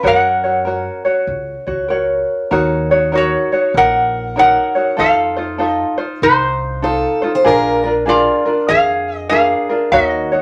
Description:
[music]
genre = Hawaiian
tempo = 97 BPM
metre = 4/4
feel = swing 64% on 8ths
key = Eb minor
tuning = A4 = 441 Hz
[part]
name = metal-body resonator slide guitar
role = melody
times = 0.0-10.4 s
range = Eb4 to F#5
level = -17 LUFS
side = equal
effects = none
[part]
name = tenor ukulele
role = accompaniment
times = 0.0-10.4 s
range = C#4 to C#5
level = -19 LUFS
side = equal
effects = none
[part]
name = upright bass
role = bass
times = 0.0-10.4 s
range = Bb1 to F#2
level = -28 LUFS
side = equal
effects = none
[part]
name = picked plugged-in steel-string acoustic guitar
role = second line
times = 6.8-7.9 s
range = A4 to C5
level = -18 LUFS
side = equal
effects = none
[sound]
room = wet small room reverb, RT60 0.6 s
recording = none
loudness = -15 LUFS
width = mono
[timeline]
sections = 0.0-2.5 A section; 2.5-10.4 B section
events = none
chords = 0.0 F#; 2.5 Ebm7; 5.0 F7; 7.5 Bb7

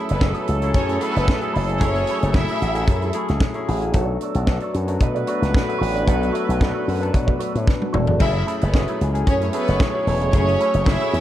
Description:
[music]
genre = disco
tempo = 113 BPM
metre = 4/4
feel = straight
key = F# minor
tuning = A4 = 440 Hz
[part]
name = barky tine electric piano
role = accompaniment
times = 0.0-11.2 s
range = F#3 to B4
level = -26 LUFS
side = left 4 dB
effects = overdrive, phaser
[part]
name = mellow electric guitar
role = accompaniment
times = 0.0-11.2 s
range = A3 to E5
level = -30 LUFS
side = right 5 dB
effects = wah
[part]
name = warm horn section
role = stabs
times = 0.0-11.2 s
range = E3 to C#5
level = -26 LUFS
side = right 3 dB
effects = none
[part]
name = bright studio violin section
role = second line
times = 0.1-3.1, 8.2-11.2 s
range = B3 to E5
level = -26 LUFS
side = equal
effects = none
[part]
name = slap bass with an envelope filter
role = bass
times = 0.1-11.2 s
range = E1 to B2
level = -22 LUFS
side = equal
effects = none
[part]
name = tight funk drum kit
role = drums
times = 0.1-11.2 s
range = crash cymbal, hi-hat, kick drum, snare drum, toms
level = -21 LUFS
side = equal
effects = none
[sound]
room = light reverb, small room reverb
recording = dark, warm production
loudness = -18 LUFS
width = side -12 dB against mid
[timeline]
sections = 0.0-11.2 A section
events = drum fill 7.7-8.2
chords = 0.0 F#m9; 3.9 Bm7; 8.2 F#m9

